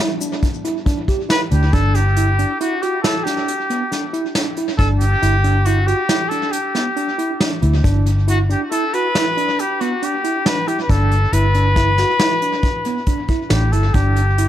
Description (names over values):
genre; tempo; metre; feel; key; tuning
progressive instrumental, band music in an uneven meter; 138 BPM; 7/4; straight; G major; A4 = 436 Hz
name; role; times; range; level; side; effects
hollow-body jazz guitar; accompaniment; 0.0-1.7 s; G3 to G4; -34 LUFS; right 2 dB; none
tine electric piano; arpeggios; 0.0-14.5 s; B3 to G4; -23 LUFS; right 2 dB; medium stereo tremolo, tape echo
vintage brush drum kit; drums; 0.2-14.5 s; hi-hat, kick drum, snare drum; -21 LUFS; equal; tape echo
tube shaker; percussion; 0.2-1.4 s; none; -34 LUFS; left 7 dB; tape echo
clear trumpet; melody; 1.3-14.5 s; F#4 to B4; -20 LUFS; left 2 dB; tape echo
vintage muted fingered electric bass; bass; 1.5-14.5 s; G1 to D2; -15 LUFS; equal; none
room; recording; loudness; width
light reverb, small room ambience; echo-heavy mix; -15 LUFS; side -11 dB against mid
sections
0.0-1.7 A section; 1.7-14.5 B section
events
none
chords
0.0 G; 1.7 G6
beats
0.43 0.86 1.30 | 1.74 2.17 2.61 3.04 3.48 3.91 4.35 | 4.79 5.22 5.66 6.09 6.53 6.97 7.40 | 7.84 8.28 8.71 9.15 9.58 10.02 10.46 | 10.89 11.33 11.77 12.20 12.64 13.07 13.51 | 13.95 14.38